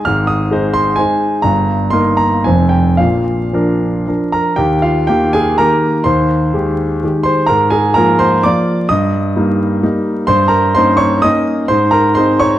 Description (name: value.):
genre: classical, romantic triple-time dance for piano with dotted rhythms.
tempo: 105-138 BPM.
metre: 3/4.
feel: rubato.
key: Eb major.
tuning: A4 = 440 Hz.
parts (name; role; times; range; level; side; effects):
warm concert grand piano; solo; 0.0-12.6 s; F1 to F6; -11 LUFS; equal; none.
room: moderate recital hall reverb, RT60 1.6 s.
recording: vinyl crackle.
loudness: -11 LUFS.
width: side -13 dB against mid.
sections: 0.0-4.6 A section; 4.6-12.6 B section.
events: none.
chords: 0.1 Ab; 1.5 Eb/G; 2.5 Fm; 3.0 Bb; 4.6 Eb; 6.1 Abmaj7/Eb; 7.5 Bb7/Ab; 8.9 Eb/G; 10.3 Eb7/G; 11.7 Ab.